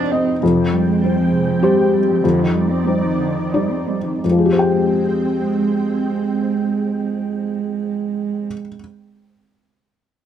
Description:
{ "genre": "neoclassical piano and strings", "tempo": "84-100 BPM", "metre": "3/4", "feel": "rubato", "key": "F dorian", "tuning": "A4 = 440 Hz", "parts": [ { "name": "dark cello", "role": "second line", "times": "0.0-8.5 s", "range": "C3 to D4", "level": "-21 LUFS", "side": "right 7 dB", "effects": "none" }, { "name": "felt-muted upright piano", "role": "accompaniment", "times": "0.0-8.8 s", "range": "F2 to G5", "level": "-18 LUFS", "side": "left 3 dB", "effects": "none" }, { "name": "analog string pad", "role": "sustained chords", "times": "0.0-8.5 s", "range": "Ab3 to G5", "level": "-24 LUFS", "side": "right 1 dB", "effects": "ensemble chorus" } ], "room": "moderate studio reverb, RT60 0.6 s", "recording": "none", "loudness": "-16 LUFS", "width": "side -9 dB against mid", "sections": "0.4-4.2 A section; 4.2-8.4 B section", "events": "slowing down 0.0-4.2", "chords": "0.4 Fmadd9; 2.2 Cmadd9/F; 4.2 Fmadd9" }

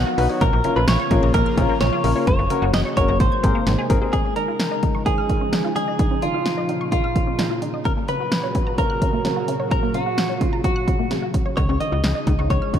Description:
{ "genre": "synth-pop", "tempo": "129 BPM", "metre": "4/4", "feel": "straight", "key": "Db major", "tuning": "A4 = 437 Hz", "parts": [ { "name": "direct-recorded clean electric guitar", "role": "melody", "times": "0.0-12.8 s", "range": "F4 to Gb5", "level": "-24 LUFS", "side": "equal", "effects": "wide subtle chorus, slapback echo" }, { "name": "lush unison pad", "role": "sustained chords", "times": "0.0-12.8 s", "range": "Bb2 to Gb4", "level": "-27 LUFS", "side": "equal", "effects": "chorus" }, { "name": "resonant blip pluck", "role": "arpeggios", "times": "0.0-12.8 s", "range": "C3 to Ab6", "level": "-29 LUFS", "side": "right 1 dB", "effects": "phaser, slapback echo" }, { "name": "slap-like FM bass", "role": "bass", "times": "0.0-4.0, 11.6-12.8 s", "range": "Gb1 to Db2", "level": "-21 LUFS", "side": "equal", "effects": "none" }, { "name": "warm concert grand piano", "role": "accompaniment", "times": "0.2-4.1 s", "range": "C4 to Db5", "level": "-25 LUFS", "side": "left 4 dB", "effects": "none" }, { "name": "punchy analog drum machine", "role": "drums", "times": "0.2-12.8 s", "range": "hi-hat, kick drum, snare drum", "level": "-22 LUFS", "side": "equal", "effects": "none" } ], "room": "light reverb", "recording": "dark, warm production", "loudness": "-18 LUFS", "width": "side -9 dB against mid", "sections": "0.0-4.1 A section; 4.1-12.8 B section", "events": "none", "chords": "0.4 Bbm; 2.3 Gb; 3.2 Abadd9; 4.1 Dbadd9; 7.9 Gb; 11.6 Dbadd9" }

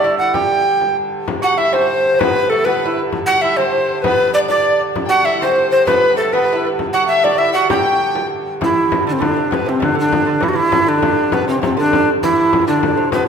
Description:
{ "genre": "medieval dance", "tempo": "131 BPM (dotted quarters)", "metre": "6/8", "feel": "straight", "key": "G major", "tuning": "A4 = 444 Hz", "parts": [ { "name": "breathy tenor recorder", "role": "melody", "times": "0.0-13.3 s", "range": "C4 to G5", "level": "-15 LUFS", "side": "equal", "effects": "none" }, { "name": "lute", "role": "second line", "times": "0.0-13.3 s", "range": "B2 to G4", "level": "-20 LUFS", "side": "right 4 dB", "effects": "none" }, { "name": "rich hurdy-gurdy", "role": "drone", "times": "0.0-13.3 s", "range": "G2 to D3", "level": "-25 LUFS", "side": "equal", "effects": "none" }, { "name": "frame drum", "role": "percussion", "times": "0.2-13.3 s", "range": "none", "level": "-23 LUFS", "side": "left 4 dB", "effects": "none" }, { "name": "clear fiddle", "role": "second line", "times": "1.4-8.3 s", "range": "A4 to G5", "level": "-25 LUFS", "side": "left 4 dB", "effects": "none" } ], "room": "wet concert hall reverb, RT60 2.1 s", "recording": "minimal, uncompressed stereo recording", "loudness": "-13 LUFS", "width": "side -6 dB against mid", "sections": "0.0-1.3 A section; 1.3-8.6 A section; 8.6-13.3 B section", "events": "speeding up 0.0-13.3", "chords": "none" }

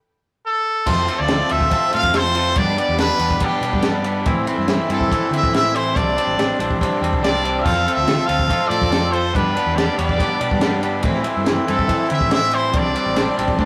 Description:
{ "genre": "indie rock", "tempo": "142 BPM", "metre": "4/4", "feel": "straight", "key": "unclear", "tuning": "A4 = 440 Hz", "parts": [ { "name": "brilliant trumpet", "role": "melody", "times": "0.5-13.6 s", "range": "G4 to F5", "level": "-23 LUFS", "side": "equal", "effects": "none" }, { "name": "phased string machine", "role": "sustained chords", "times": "0.9-13.7 s", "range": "F4 to C6", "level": "-35 LUFS", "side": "equal", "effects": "none" }, { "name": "crunchy overdriven guitar", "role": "riff", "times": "0.9-13.7 s", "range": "E3 to A4", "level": "-27 LUFS", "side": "equal", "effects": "none" }, { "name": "twangy electric guitar", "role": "riff", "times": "0.9-13.7 s", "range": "E3 to A4", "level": "-26 LUFS", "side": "equal", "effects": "none" }, { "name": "hollow-body short-scale picked electric bass", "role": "bass", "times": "0.9-13.6 s", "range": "A1 to D3", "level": "-27 LUFS", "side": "equal", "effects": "none" }, { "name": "compact cocktail drum kit", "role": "drums", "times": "0.9-13.7 s", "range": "crash cymbal, kick drum, ride cymbal, snare drum, toms", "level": "-25 LUFS", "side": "equal", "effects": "none" } ], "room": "moderate studio reverb, RT60 0.6 s", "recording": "rough rehearsal-room recording, warm saturation", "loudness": "-19 LUFS", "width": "mono", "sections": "0.9-13.7 A section", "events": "stop 0.0-0.9", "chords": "0.0 N.C.; 0.9 F; 2.6 G; 4.3 Am; 6.0 Csus2; 7.7 F; 9.4 G; 11.0 Am; 12.7 Csus2" }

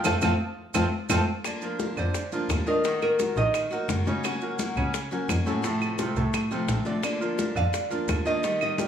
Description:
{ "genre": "latin, Cuban son and guajira", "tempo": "172 BPM", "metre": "4/4", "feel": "straight", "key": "Bb major", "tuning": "A4 = 440 Hz", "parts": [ { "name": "picked steel-string acoustic guitar", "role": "accompaniment", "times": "0.0-8.9 s", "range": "C3 to G4", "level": "-31 LUFS", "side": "left 3 dB", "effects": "none" }, { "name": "bright concert grand piano", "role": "arpeggios", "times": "0.0-8.9 s", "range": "A2 to Eb5", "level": "-30 LUFS", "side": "right 3 dB", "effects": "none" }, { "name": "warm double bass", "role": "bass", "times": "0.0-8.2 s", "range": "Gb1 to F2", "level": "-28 LUFS", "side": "equal", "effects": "none" }, { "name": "congas", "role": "percussion", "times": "0.0-8.9 s", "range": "none", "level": "-35 LUFS", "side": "left 2 dB", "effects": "none" }, { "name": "maracas", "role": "percussion", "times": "0.0-8.9 s", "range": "none", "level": "-40 LUFS", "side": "right 7 dB", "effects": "none" }, { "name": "nylon-string guitar", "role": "melody", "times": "0.1-3.9, 7.6-8.9 s", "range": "Bb4 to A5", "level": "-28 LUFS", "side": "equal", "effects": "slapback echo" }, { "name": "bongos", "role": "percussion", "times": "0.1-8.9 s", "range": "none", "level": "-35 LUFS", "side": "left 7 dB", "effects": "none" }, { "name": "claves", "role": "percussion", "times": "0.1-8.8 s", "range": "none", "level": "-34 LUFS", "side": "right 7 dB", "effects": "none" } ], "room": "moderate large studio reverb, RT60 1.1 s", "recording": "small room ambience", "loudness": "-24 LUFS", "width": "side -8 dB against mid", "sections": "0.0-1.4 A section; 1.4-8.9 B section", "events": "nylon-string guitar solo 0.0-1.4; band accent 0.0-1.4; drum fill 0.4-1.4", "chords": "0.0 F; 1.4 Bb; 2.8 Ebm; 4.2 Gb; 5.6 F; 7.0 Bb" }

